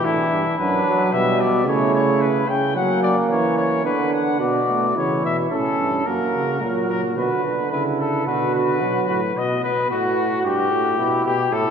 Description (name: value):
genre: classical, imitative canzona for brass ensemble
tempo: 110 BPM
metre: 4/4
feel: straight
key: unclear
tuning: A4 = 440 Hz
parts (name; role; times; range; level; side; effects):
- warm trumpet; melody; 0.0-11.7 s; E4 to G5; -22 LUFS; left 4 dB; none
- warm flugelhorn; second line; 0.0-11.7 s; B3 to B4; -25 LUFS; right 5 dB; none
- clear trombone; accompaniment; 0.0-9.4 s; D3 to C#4; -25 LUFS; right 3 dB; none
- clear bass trombone; bass; 0.0-11.6 s; F#2 to F#3; -23 LUFS; right 1 dB; none
room: wet church reverb, RT60 3.4 s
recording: heard from further back in the room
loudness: -18 LUFS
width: side -7 dB against mid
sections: 0.0-5.0 A section; 5.0-11.7 B section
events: none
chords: 0.0 Em; 0.6 Bm/F#; 1.7 C#dim; 2.8 F#; 3.8 Bm/D; 5.0 C#dim; 6.1 F#; 7.2 Bm; 9.4 B; 10.4 Em/G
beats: 0.06 | 0.60 1.13 1.67 2.21 | 2.75 3.30 3.85 4.40 | 4.96 5.51 6.07 6.62 | 7.17 7.71 8.26 8.81 | 9.36 9.90 10.44 10.98 | 11.53